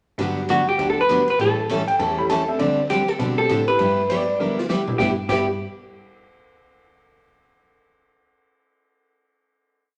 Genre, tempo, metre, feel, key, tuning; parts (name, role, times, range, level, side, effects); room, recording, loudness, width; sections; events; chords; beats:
country, western swing; 200 BPM; 4/4; swing 62% on 8ths; G major; A4 = 440 Hz
clear upright piano; accompaniment; 0.2-5.5 s; G3 to A4; -30 LUFS; equal
picked steel-string acoustic guitar; accompaniment; 0.2-5.5 s; D3 to A4; -27 LUFS; equal
rich cello; bass; 0.2-5.5 s; D2 to D3; -31 LUFS; equal
vintage drum kit; drums; 0.2-5.4 s; crash cymbal, hi-hat, kick drum, ride cymbal, rim click, snare drum, toms; -36 LUFS; equal
vintage hollow-body jazz guitar; melody; 0.5-5.5 s; F#4 to B4; -23 LUFS; equal
clean lap steel guitar; second line; 1.9-5.5 s; F4 to B5; -26 LUFS; equal
wet large studio reverb, RT60 1.2 s; -21 LUFS; mono
0.2-5.0 A section; 5.0-6.2 final chord
drum fill 4.4-5.0
0.2 Gmaj7; 1.4 A7; 2.6 D7sus4; 3.8 G6
| 0.19 0.49 0.79 1.09 | 1.40 1.70 2.00 2.30 | 2.60 2.90 3.20 3.50 | 3.80 4.10 4.40 4.70 | 5.00 5.29